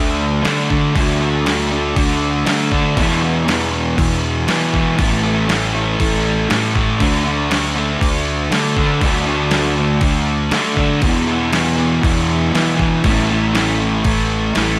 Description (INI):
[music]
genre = rock, shoegaze and dream pop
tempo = 119 BPM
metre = 4/4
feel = straight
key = unclear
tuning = A4 = 437 Hz
[part]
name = fuzz guitar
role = riff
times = 0.0-14.8 s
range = E2 to D4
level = -20 LUFS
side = equal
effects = distortion, lush chorus
[part]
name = fuzz fingered electric bass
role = bass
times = 0.0-14.8 s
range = A1 to E3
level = -22 LUFS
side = equal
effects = overdrive
[part]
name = detuned 8-bit digital drum machine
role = drums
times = 0.4-14.7 s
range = crash cymbal, kick drum, snare drum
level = -22 LUFS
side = equal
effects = none
[sound]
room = wet lush hall reverb, RT60 1.6 s, digital ambience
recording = dreamy mix soaked in reverb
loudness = -17 LUFS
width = mono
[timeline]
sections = 0.0-14.8 A section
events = none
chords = 0.0 D5; 3.0 E5; 5.0 A5; 7.0 D5; 11.0 E5; 13.0 A5